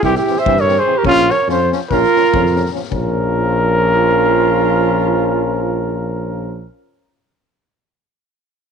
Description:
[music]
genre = balkan folk, Balkan brass band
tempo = 289 BPM (eighths)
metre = 9/8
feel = straight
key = Bb dorian sharp4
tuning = A4 = 440 Hz
[part]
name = dark trumpet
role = melody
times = 0.0-6.7 s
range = F4 to E5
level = -16 LUFS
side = left 1 dB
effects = none
[part]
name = warm alto saxophone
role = second line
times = 0.0-6.7 s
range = Db4 to C5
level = -20 LUFS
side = right 14 dB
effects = none
[part]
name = clear euphonium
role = accompaniment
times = 0.0-6.7 s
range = E3 to F3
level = -25 LUFS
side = right 12 dB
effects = none
[part]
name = clear trombone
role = accompaniment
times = 0.0-6.7 s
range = C4 to Db4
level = -23 LUFS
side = left 16 dB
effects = none
[part]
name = mellow tuba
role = bass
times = 0.0-6.7 s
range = Bb1 to G2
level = -20 LUFS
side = left 2 dB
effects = none
[part]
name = street-band drum kit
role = percussion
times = 0.0-3.1 s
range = kick drum, snare drum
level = -25 LUFS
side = left 5 dB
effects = none
[sound]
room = light reverb, studio ambience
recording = 1960s-style stereo with parts hard left and right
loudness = -13 LUFS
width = side -6 dB against mid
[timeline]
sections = 0.0-2.9 A section; 2.9-6.6 B section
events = none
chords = 0.0 C; 1.0 Bbm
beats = 0.00 0.21 0.42 0.63 0.84 | 1.05 1.25 1.46 1.67 1.88 2.09 2.30 2.50 2.71 | 2.92 3.13 3.33 3.54 3.75 3.96 4.17 4.37 4.58 | 4.79 4.99 5.20 5.41 5.61 5.82 6.03 6.23 6.44

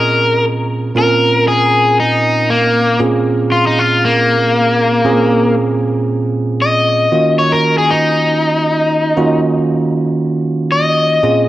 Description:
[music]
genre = blues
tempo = 117 BPM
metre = 4/4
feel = straight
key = Bb minor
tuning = A4 = 440 Hz
[part]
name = crunchy overdriven guitar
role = melody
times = 0.0-11.5 s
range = Bb3 to Eb5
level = -13 LUFS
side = left 2 dB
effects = spring reverb
[part]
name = barky tine electric piano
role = accompaniment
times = 0.0-11.5 s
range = Bb2 to Bb4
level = -15 LUFS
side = right 2 dB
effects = none
[sound]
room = moderate studio ambience, RT60 0.5 s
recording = none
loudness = -11 LUFS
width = side -14 dB against mid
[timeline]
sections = 0.0-11.5 A section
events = overdriven electric guitar solo 0.0-11.5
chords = 0.0 Bbm9; 7.1 Ebm9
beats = 0.43 | 0.95 1.46 1.97 2.49 | 3.00 3.52 4.03 4.54 | 5.06 5.57 6.08 6.60 | 7.11 7.63 8.14 8.65 | 9.17 9.68 10.20 10.71 | 11.22

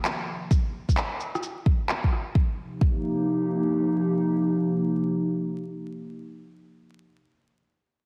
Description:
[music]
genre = future garage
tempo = 130 BPM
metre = 4/4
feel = swing 65% on 16ths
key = C minor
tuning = A4 = 440 Hz
[part]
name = warbly tape-like pad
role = sustained chords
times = 0.0-6.8 s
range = C3 to G4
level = -28 LUFS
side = equal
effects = chorus, built-in reverb, vintage 12-bit sampler grit, sidechain pumping
[part]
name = electronic handclaps, shaker and rim click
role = drums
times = 0.0-2.2 s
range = none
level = -32 LUFS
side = equal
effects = low-pass filter on perc, low-pass filter on snare, low-pass filter on room
[part]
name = electronic kick drum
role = drums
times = 0.5-3.0 s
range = none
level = -25 LUFS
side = equal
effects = none
[sound]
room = moderate lush hall reverb, RT60 1.8 s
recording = heavily compressed radio sound, multiband compression, vinyl crackle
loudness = -26 LUFS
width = mono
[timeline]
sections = 0.0-2.4 A section; 2.4-6.0 B section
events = none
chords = 0.0 Cm7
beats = 0.05 | 0.51 0.97 1.43 1.89 | 2.35 2.82 3.28 3.74 | 4.20 4.66 5.12 5.58

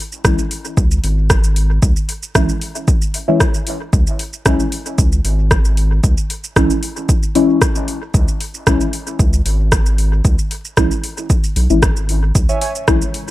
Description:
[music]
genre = dub techno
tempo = 114 BPM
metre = 4/4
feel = straight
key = C# minor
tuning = A4 = 440 Hz
[part]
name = deep house drum kit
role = drums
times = 0.1-13.3 s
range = hi-hat, rim click, shaker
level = -20 LUFS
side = equal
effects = overdrive, dub echo
[part]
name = deep mellow chord stab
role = stabs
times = 0.2-13.0 s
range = E3 to E4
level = -18 LUFS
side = left 2 dB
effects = chorus, phaser, sidechain pumping, dub echo
[part]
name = round analog bass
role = bass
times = 0.2-13.0 s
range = G#1 to C#2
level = -16 LUFS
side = equal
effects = sidechain pumping
[part]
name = electronic kick drum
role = drums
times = 0.2-13.0 s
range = none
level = -16 LUFS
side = equal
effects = overdrive
[part]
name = deep dark ambient pad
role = sustained chords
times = 12.7-13.3 s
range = G#3 to C#5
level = -36 LUFS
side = left 3 dB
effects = chorus, built-in reverb, sidechain pumping
[part]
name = warbly lo-fi synth keys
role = riff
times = 12.5-12.7 s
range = C#5 to G#5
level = -22 LUFS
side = right 4 dB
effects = chorus, tremolo, sidechain pumping, dub echo
[sound]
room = digital ambience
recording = vinyl crackle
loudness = -13 LUFS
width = side -16 dB against mid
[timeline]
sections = 0.0-13.3 A section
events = none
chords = 0.0 C#m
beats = 0.25 0.77 1.30 | 1.83 2.35 2.88 3.40 | 3.93 4.46 4.98 5.51 | 6.04 6.56 7.09 7.62 | 8.14 8.67 9.19 9.72 | 10.25 10.77 11.30 11.83 | 12.35 12.88

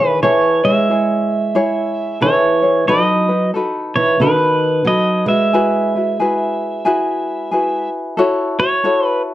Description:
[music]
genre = Hawaiian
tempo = 90 BPM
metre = 4/4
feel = swing 63% on 8ths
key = E major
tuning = A4 = 440 Hz
[part]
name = pedal steel guitar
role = melody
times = 0.0-9.2 s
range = B4 to E5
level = -17 LUFS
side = right 2 dB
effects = none
[part]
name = fingerpicked old ladder-braced acoustic guitar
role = second line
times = 0.0-7.9 s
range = D#3 to G#3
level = -18 LUFS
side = right 2 dB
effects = none
[part]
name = tenor ukulele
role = accompaniment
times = 0.0-9.3 s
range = D#4 to C#5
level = -18 LUFS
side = left 2 dB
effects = none
[sound]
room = wet small room reverb, RT60 0.5 s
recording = dark, warm production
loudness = -13 LUFS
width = side -14 dB against mid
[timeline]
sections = 0.0-8.2 A section; 8.2-9.3 B section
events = none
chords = 0.2 Amaj7; 2.9 B7; 5.5 Eadd9; 8.2 A6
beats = | 0.22 0.88 1.55 2.21 | 2.87 3.54 4.20 4.86 | 5.53 6.19 6.85 7.51 | 8.18 8.84

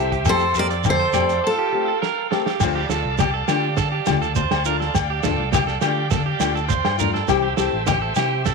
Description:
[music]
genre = highlife guitar band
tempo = 103 BPM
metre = 4/4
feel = straight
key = D minor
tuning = A4 = 440 Hz
[part]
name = nylon-string guitar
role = accompaniment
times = 0.0-8.3 s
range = E3 to G4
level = -26 LUFS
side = left 13 dB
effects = none
[part]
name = bright tonewheel organ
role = sustained chords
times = 0.0-8.5 s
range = A4 to A5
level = -30 LUFS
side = equal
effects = slow rotary speaker
[part]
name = electric guitar at the edge of break-up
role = arpeggios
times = 0.0-8.5 s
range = G4 to D5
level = -25 LUFS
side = right 11 dB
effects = slapback echo
[part]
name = fingered electric bass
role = bass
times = 0.0-8.5 s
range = A1 to D3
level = -26 LUFS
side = equal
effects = none
[part]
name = warm soul drum kit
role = drums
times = 0.1-8.5 s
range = crash cymbal, hi-hat, kick drum, rim click, snare drum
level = -27 LUFS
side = right 6 dB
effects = none
[part]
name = picked steel-string acoustic guitar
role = melody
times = 0.3-2.0 s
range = A4 to D5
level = -22 LUFS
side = equal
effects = none
[part]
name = warm trumpet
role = second line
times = 0.3-2.0 s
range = F4 to Bb4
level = -29 LUFS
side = right 10 dB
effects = none
[part]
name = agogo bells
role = percussion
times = 0.3-8.3 s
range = none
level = -27 LUFS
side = left 14 dB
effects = none
[part]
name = congas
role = percussion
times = 0.3-8.5 s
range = none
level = -27 LUFS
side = left 8 dB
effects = none
[part]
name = shekere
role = percussion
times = 0.3-8.5 s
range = none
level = -27 LUFS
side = right 4 dB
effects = none
[sound]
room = moderate echo chamber reverb, RT60 1.3 s, small room ambience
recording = 1960s-style stereo with parts hard left and right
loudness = -18 LUFS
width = side -4 dB against mid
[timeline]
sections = 0.0-2.6 A section; 2.6-8.5 B section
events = break 1.4-2.6; drum fill 2.0-2.6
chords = 0.3 Fadd9; 2.6 Dm; 7.3 C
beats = | 0.26 0.85 1.43 2.02 | 2.61 3.19 3.78 4.36 | 4.95 5.53 6.12 6.70 | 7.29 7.87 8.46

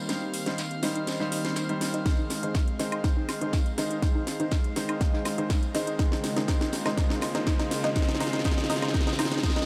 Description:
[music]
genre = progressive house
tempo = 122 BPM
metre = 4/4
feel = straight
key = unclear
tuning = A4 = 440 Hz
[part]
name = lush unison pad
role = sustained chords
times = 0.0-9.7 s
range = Db3 to G4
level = -37 LUFS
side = equal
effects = chorus, sidechain pumping
[part]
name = warm grand piano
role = stabs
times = 0.0-9.7 s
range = Eb3 to C5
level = -36 LUFS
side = equal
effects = sidechain pumping, dub echo
[part]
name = round analog bass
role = bass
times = 0.0-9.4 s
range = none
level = barely audible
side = none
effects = none
[part]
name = drifting glass-harmonics texture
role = texture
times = 0.0-9.7 s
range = F5 to F6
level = -46 LUFS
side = equal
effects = chorus, built-in reverb, sidechain pumping
[part]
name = tight sequenced synth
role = arpeggios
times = 0.1-9.6 s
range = Eb4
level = -36 LUFS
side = equal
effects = chorus, sidechain pumping, dub echo
[part]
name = house drum kit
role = drums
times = 0.1-9.7 s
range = hi-hat, snare drum, woodblock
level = -34 LUFS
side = equal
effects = overdrive
[part]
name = vintage brush drum kit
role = drums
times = 0.1-9.7 s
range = hi-hat, snare drum, tambourine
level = -45 LUFS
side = equal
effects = high-pass filter on hats, high-pass filter on snare, high-pass filter on perc, high-pass filter on room
[part]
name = electronic kick drum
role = drums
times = 2.1-9.5 s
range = none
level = -28 LUFS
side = equal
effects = none
[part]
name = riser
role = sound effects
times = 5.6-9.7 s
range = none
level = -43 LUFS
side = equal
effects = none
[sound]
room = light reverb, small room ambience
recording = none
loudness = -27 LUFS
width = mono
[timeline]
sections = 0.0-9.7 A section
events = build-up 0.0-9.7; drum fill 0.0-9.7; filter sweep on synth arpeggio sound 0.0-9.7; filter sweep on analog synth pad 0.0-9.7; riser 5.6-9.7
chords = 0.0 Eb6; 2.1 Ab/Eb; 6.0 Db6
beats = | 0.09 0.58 1.07 1.57 | 2.06 2.55 3.04 3.53 | 4.03 4.52 5.01 5.50 | 5.99 6.48 6.98 7.47 | 7.96 8.45 8.94 9.44

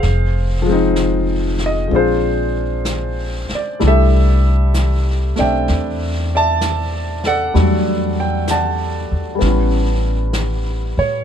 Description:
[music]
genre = jazz ballad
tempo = 64 BPM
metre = 4/4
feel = swing 68% on 8ths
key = unclear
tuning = A4 = 442 Hz
[part]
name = warm concert grand piano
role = accompaniment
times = 0.0-11.2 s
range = F3 to A5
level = -18 LUFS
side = equal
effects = none
[part]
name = upright bass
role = bass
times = 0.0-11.2 s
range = F1 to A2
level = -17 LUFS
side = equal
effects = none
[part]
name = jazz brush drum kit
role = drums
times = 0.0-11.2 s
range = brushed snare drum, hi-hat, snare drum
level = -28 LUFS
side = left 1 dB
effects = none
[sound]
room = little or no reverb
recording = dark, warm production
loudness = -15 LUFS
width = side -8 dB against mid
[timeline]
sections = 0.0-11.2 A section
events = none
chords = 0.0 Fm7; 1.9 A#9; 3.8 C69; 7.5 Em11; 9.4 A9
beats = | 0.02 0.96 1.90 2.85 | 3.80 4.74 5.67 6.61 | 7.54 8.47 9.39 10.32

